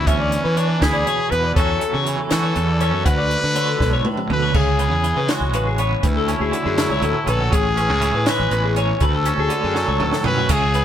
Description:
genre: math rock and midwest emo.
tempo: 80 BPM (dotted quarters).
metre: 6/8.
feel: straight.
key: D lydian.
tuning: A4 = 440 Hz.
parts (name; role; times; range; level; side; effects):
bright trumpet; melody; 0.0-10.8 s; C#4 to B4; -23 LUFS; left 1 dB; none.
twangy electric guitar; accompaniment; 0.0-10.8 s; D2 to F#4; -24 LUFS; right 5 dB; tremolo.
twelve-string electric guitar; arpeggios; 0.0-10.8 s; F#4 to F#5; -24 LUFS; left 5 dB; none.
fuzz fingered electric bass; bass; 0.0-10.8 s; A1 to E3; -21 LUFS; equal; overdrive.
compact cocktail drum kit; drums; 0.1-10.8 s; crash cymbal, hi-hat, kick drum, snare drum, toms; -22 LUFS; right 1 dB; none.
room: light reverb.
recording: band playing live in one room.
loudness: -16 LUFS.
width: side -10 dB against mid.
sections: 0.0-4.5 A section; 4.5-10.8 B section.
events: drum fill 3.8-4.5, 9.8-10.5.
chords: 0.0 E7; 1.6 A6/E; 3.1 D6; 4.5 C#m7; 6.0 Dmaj9; 7.5 Amaj9; 9.0 Dmaj7.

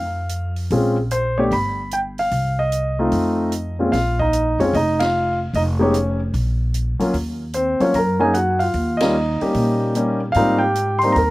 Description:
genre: jazz piano trio.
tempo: 149 BPM.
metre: 4/4.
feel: swing 65% on 8ths.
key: Bb minor.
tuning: A4 = 441 Hz.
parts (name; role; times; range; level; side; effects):
warm grand piano; melody; 0.0-11.3 s; Bb2 to C6; -18 LUFS; equal; none.
upright bass; bass; 0.0-11.3 s; F1 to Bb2; -22 LUFS; equal; none.
open jazz drum kit; drums; 0.3-11.3 s; hi-hat, kick drum, ride cymbal, snare drum; -33 LUFS; right 1 dB; none.
room: little or no reverb.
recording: recorded outdoors, with no room sound.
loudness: -17 LUFS.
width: side -19 dB against mid.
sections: 0.0-3.9 A section; 3.9-11.3 A section.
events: band accent 4.9, 9.0.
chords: 0.0 N.C.; 0.7 Bbm7; 1.5 G; 2.3 Cmadd11; 3.1 F7; 3.9 Bb5; 5.5 F7(no3); 6.3 Bb5; 7.1 Ebm7; 8.8 Eb7; 10.4 Abmaj7.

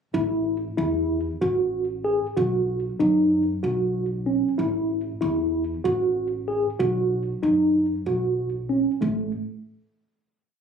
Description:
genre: progressive instrumental, progressive.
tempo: 189 BPM (eighths).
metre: 7/8.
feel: straight.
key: A major.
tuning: A4 = 435 Hz.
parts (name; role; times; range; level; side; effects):
mellow tine electric piano; arpeggios; 0.1-9.3 s; A3 to G#4; -22 LUFS; right 1 dB; medium stereo tremolo, slapback echo, plate reverb.
upright bass; bass; 0.1-9.3 s; A1 to F#2; -29 LUFS; left 1 dB; none.
room: moderate small room reverb, RT60 0.5 s.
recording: recorded on a phone in the room, club reverb.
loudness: -22 LUFS.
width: side -7 dB against mid.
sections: 0.1-9.0 groove; 9.0-10.6 final note.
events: none.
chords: 0.1 A5; 2.4 B; 4.6 A5; 6.8 B; 9.0 N.C..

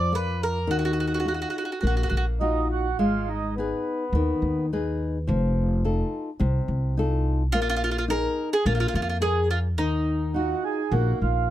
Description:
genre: italian folk, Italian serenade.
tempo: 106 BPM.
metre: 4/4.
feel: rubato.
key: Eb harmonic minor.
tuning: A4 = 440 Hz.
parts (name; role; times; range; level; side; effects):
mandolin; melody; 0.0-2.2, 7.5-11.5 s; Eb4 to D5; -27 LUFS; right 3 dB; none.
flamenco guitar; accompaniment; 0.0-11.5 s; C3 to D5; -28 LUFS; left 3 dB; none.
upright bass; bass; 0.0-11.5 s; F1 to F2; -25 LUFS; equal; none.
mellow accordion; second line; 2.4-4.7, 10.3-11.5 s; Cb4 to Ab4; -28 LUFS; right 5 dB; none.
room: light reverb.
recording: dark, warm production.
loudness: -22 LUFS.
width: side -13 dB against mid.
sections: 0.0-11.5 A section.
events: none.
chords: 0.0 Bb; 0.7 Ebmadd9; 3.0 Abm; 5.3 F7; 7.5 Bb7sus4; 8.6 Bb7; 9.8 Ebmadd9.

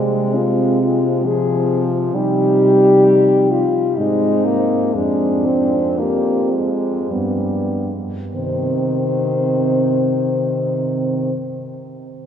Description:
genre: classical, lyrical piece for horn quartet.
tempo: 46-68 BPM.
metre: 3/4.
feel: rubato.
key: C minor.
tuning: A4 = 440 Hz.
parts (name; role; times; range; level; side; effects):
mellow French horn; melody; 0.0-11.3 s; C4 to C5; -19 LUFS; left 3 dB; none.
dark French horn; second line; 0.0-11.3 s; Ab3 to Eb4; -23 LUFS; right 5 dB; none.
mellow French horn; accompaniment; 0.0-11.3 s; Eb3 to C4; -21 LUFS; left 1 dB; none.
mellow French horn; bass; 0.0-11.3 s; F2 to C3; -22 LUFS; right 1 dB; none.
room: wet cathedral reverb, RT60 6.4 s.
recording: heard from further back in the room.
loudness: -15 LUFS.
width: side -8 dB against mid.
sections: 0.0-8.3 A section; 8.3-11.9 B section.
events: slowing down 0.8-8.3.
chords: 0.0 Fm/C; 2.1 Cm; 4.0 Ab; 4.9 Ddim/F; 7.1 G; 8.3 Cm.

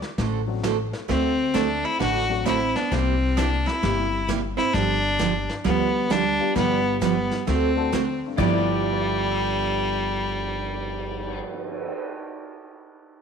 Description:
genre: country, western swing.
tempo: 132 BPM.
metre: 4/4.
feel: swing 65% on 8ths.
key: G mixolydian.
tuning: A4 = 439 Hz.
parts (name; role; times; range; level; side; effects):
vintage brush drum kit; drums; 0.0-11.9 s; brushed snare drum, crash cymbal, cymbal swell, hi-hat, kick drum, snare drum; -33 LUFS; left 1 dB; none.
picked steel-string acoustic guitar; accompaniment; 0.2-11.9 s; G2 to A4; -28 LUFS; right 11 dB; none.
upright bass; bass; 0.2-11.4 s; G1 to D2; -28 LUFS; left 2 dB; none.
dark upright piano; accompaniment; 0.5-12.4 s; G2 to G6; -33 LUFS; left 14 dB; none.
clear fiddle; melody; 1.1-11.4 s; G3 to F#4; -24 LUFS; left 2 dB; none.
hollow-body jazz guitar; second line; 1.1-11.4 s; G3 to E4; -29 LUFS; right 9 dB; none.
pedal steel guitar; second line; 8.4-11.4 s; D5; -33 LUFS; left 9 dB; none.
room: light reverb, small room ambience.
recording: 1960s-style stereo with parts hard left and right.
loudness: -21 LUFS.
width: side -6 dB against mid.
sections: 0.0-8.4 A section; 8.4-12.0 B section.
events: none.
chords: 0.0 D7; 2.9 C7; 4.7 G7; 7.5 D7; 8.4 G13.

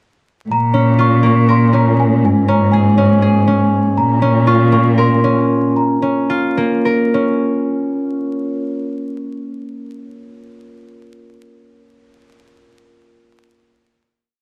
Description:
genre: contemporary instrumental, chamber music in an uneven meter.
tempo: 239 BPM (eighths).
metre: 7/8.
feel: uneven beats.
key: Bb minor.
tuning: A4 = 440 Hz.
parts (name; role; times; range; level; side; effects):
celesta; melody; 0.5-7.4 s; Ab5 to Db6; -22 LUFS; equal; none.
warm cello; bass; 0.5-5.7 s; Ab2 to Bb2; -16 LUFS; equal; none.
concert harp; arpeggios; 0.7-10.0 s; Bb3 to Bb4; -19 LUFS; equal; plate reverb.
room: light reverb.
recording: dark, warm production, vinyl crackle.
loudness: -14 LUFS.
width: mono.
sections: 0.5-7.8 A section.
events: slowing down 4.0-7.8.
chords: 0.5 Bbm; 2.2 Absus4; 4.0 Bbm.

